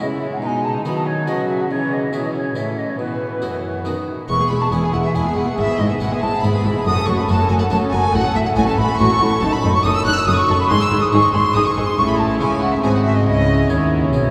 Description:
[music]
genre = classical, baroque-style concerto movement with solo episodes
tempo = 140 BPM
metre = 3/4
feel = straight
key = E major, C# minor from 9.4 s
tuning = A4 = 440 Hz
[part]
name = warm chamber violin section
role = melody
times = 0.0-14.3 s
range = E4 to F#6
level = -28 LUFS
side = equal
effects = none
[part]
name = wooden flute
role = melody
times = 0.0-14.3 s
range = B4 to F#6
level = -24 LUFS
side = equal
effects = none
[part]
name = warm chamber violin section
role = second line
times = 0.0-14.3 s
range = B3 to A4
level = -28 LUFS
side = equal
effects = none
[part]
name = dark chamber viola section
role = accompaniment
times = 0.0-14.3 s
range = D#3 to D#4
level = -27 LUFS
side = equal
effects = none
[part]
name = harpsichord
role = accompaniment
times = 0.0-14.3 s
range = E2 to C#5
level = -29 LUFS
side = equal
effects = none
[part]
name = rich chamber cello section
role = bass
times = 0.0-14.3 s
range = E2 to D#3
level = -24 LUFS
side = equal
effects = none
[part]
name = rich chamber double bass section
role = bass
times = 4.3-14.3 s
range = E1 to D#2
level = -25 LUFS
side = equal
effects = none
[sound]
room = wet cathedral reverb, RT60 6.0 s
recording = heard from further back in the room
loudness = -18 LUFS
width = mono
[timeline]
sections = 0.0-4.3 A section; 4.3-14.3 B section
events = none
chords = 0.4 B; 1.7 C#m; 2.6 A; 3.0 Bsus4; 3.9 B; 4.3 E; 5.6 E/G#; 6.9 F#m; 8.1 F#m/A; 9.4 D#dim/F#; 10.7 G#5; 12.0 A; 12.8 G#7; 13.3 C#m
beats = 0.00 | 0.42 0.85 1.28 | 1.70 2.13 2.56 | 2.99 3.43 3.86 | 4.29 4.72 5.15 | 5.58 6.01 6.44 | 6.87 7.29 7.72 | 8.14 8.57 9.00 | 9.42 9.85 10.27 | 10.70 11.12 11.55 | 11.97 12.40 12.83 | 13.26 13.70 14.13

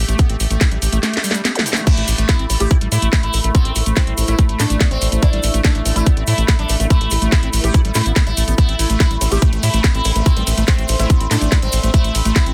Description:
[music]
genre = psychedelic trance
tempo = 143 BPM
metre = 4/4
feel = straight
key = A minor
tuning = A4 = 439 Hz
[part]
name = overtone-sweeping drone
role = sustained chords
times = 0.0-12.5 s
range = A3 to G4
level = -31 LUFS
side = equal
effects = chorus, built-in reverb, sidechain pumping
[part]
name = round analog bass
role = bass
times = 0.0-12.5 s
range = A1 to A2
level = -20 LUFS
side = equal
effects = none
[part]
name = liquid acid bass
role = riff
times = 0.1-12.5 s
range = G3 to E4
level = -28 LUFS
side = equal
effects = chorus, sidechain pumping, tape echo
[part]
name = garage drum kit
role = drums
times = 0.1-12.5 s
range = crash cymbal, hi-hat, ride cymbal, snare drum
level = -24 LUFS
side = equal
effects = none
[part]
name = tube shaker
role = percussion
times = 0.1-12.4 s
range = none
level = -31 LUFS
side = equal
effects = none
[part]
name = electronic kick drum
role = drums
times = 0.2-12.4 s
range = none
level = -16 LUFS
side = equal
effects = none
[part]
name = zap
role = sound effects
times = 1.6-1.7 s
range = none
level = -32 LUFS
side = equal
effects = none
[part]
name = sitar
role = melody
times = 1.9-12.5 s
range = C4 to G4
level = -26 LUFS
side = equal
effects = phaser, sidechain pumping, tape echo
[part]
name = vowel-sweep wobble bass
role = second line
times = 2.5-11.1 s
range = E3 to C4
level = -35 LUFS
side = equal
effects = none
[sound]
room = little or no reverb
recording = dense, heavily limited modern master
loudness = -16 LUFS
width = mono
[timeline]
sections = 0.0-12.5 A section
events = drum fill 1.0-1.9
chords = 0.0 A5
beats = | 0.19 0.61 1.03 1.45 | 1.87 2.29 2.71 3.13 | 3.55 3.97 4.39 4.81 | 5.22 5.64 6.07 6.48 | 6.90 7.32 7.74 8.16 | 8.58 9.00 9.42 9.84 | 10.26 10.68 11.10 11.52 | 11.94 12.36

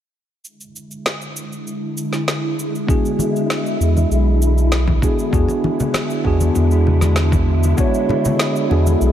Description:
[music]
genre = sunset chillout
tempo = 98 BPM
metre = 4/4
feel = straight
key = unclear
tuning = A4 = 440 Hz
[part]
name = soft string machine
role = sustained chords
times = 0.4-9.1 s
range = D3 to E4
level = -22 LUFS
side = equal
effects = phaser, ensemble chorus
[part]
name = electronic cabasa and snare drum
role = drums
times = 0.4-9.1 s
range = none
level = -25 LUFS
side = equal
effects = none
[part]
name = mellow tine electric piano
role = accompaniment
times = 2.9-9.1 s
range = B3 to C#5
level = -21 LUFS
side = equal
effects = auto-pan, dub echo
[part]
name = electronic kick drum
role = drums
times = 2.9-7.9 s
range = none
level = -19 LUFS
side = equal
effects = overdrive
[part]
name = congas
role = percussion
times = 3.2-9.0 s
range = none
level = -25 LUFS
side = left 3 dB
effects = dub echo
[part]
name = warm sub bass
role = bass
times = 3.8-9.1 s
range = B1 to E2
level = -15 LUFS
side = equal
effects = tube saturation
[sound]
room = light reverb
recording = echo-heavy mix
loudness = -15 LUFS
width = side -10 dB against mid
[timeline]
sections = 0.4-5.3 A section; 5.3-9.1 B section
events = filter sweep on string machine 0.4-5.3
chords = 0.4 E7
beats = | 0.44 1.05 1.67 2.28 | 2.89 3.50 4.11 4.73 | 5.34 5.95 6.56 7.17 | 7.79 8.40 9.01

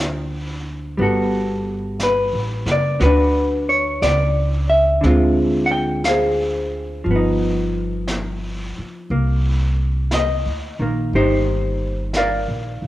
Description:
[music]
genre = jazz ballad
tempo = 59 BPM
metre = 4/4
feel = swing 69% on 8ths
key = unclear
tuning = A4 = 441 Hz
[part]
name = vintage hollow-body jazz guitar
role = accompaniment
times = 0.0-12.9 s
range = D3 to G5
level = -19 LUFS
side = equal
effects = cassette tape
[part]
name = upright bass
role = bass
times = 0.0-12.9 s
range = F#1 to D2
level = -21 LUFS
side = equal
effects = none
[part]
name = jazz brush drum kit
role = drums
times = 1.0-12.9 s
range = brushed snare drum, hi-hat, snare drum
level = -29 LUFS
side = equal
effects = cassette tape
[sound]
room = light reverb, small room reverb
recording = home recording on cassette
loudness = -17 LUFS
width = side -15 dB against mid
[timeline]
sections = 0.0-12.9 A section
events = none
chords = 0.0 D7alt; 1.0 Gmaj9; 5.0 Dm7b5; 7.1 G7b13; 9.1 Cm9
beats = 0.00 | 1.00 2.01 3.01 4.03 | 5.04 6.05 7.07 8.09 | 9.11 10.12 11.13 12.15

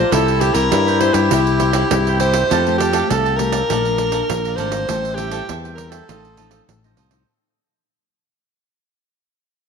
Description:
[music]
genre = samba and choro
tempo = 101 BPM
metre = 4/4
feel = straight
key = F major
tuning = A4 = 441 Hz
[part]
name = clear soprano saxophone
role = melody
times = 0.0-7.0 s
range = G4 to C5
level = -20 LUFS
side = right 2 dB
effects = tape echo
[part]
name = warm clarinet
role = second line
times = 0.0-2.5 s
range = E4 to F4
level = -20 LUFS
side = left 9 dB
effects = none
[part]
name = cavaquinho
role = accompaniment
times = 0.0-7.3 s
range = E4 to Bb5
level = -25 LUFS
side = right 8 dB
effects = none
[part]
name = nylon-string guitar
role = accompaniment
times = 0.0-7.3 s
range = F2 to G4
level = -26 LUFS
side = left 10 dB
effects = none
[part]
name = sustaining fretless electric bass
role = bass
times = 0.0-7.2 s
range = Ab1 to G2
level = -21 LUFS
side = left 1 dB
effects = none
[part]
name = pandeiro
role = percussion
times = 0.1-7.3 s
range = none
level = -24 LUFS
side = right 10 dB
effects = none
[sound]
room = wet echo chamber reverb, RT60 2.1 s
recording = 1960s-style stereo with parts hard left and right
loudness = -15 LUFS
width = side -6 dB against mid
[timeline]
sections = 0.0-2.5 A section; 2.5-7.3 B section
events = fade-out 2.5-7.3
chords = 0.1 C; 2.5 Fadd9; 3.7 Bbmaj7; 4.9 Am7; 6.1 F7/A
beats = | 0.12 0.72 1.31 1.91 | 2.50 3.10 3.70 4.29 | 4.89 5.49 6.08 6.68

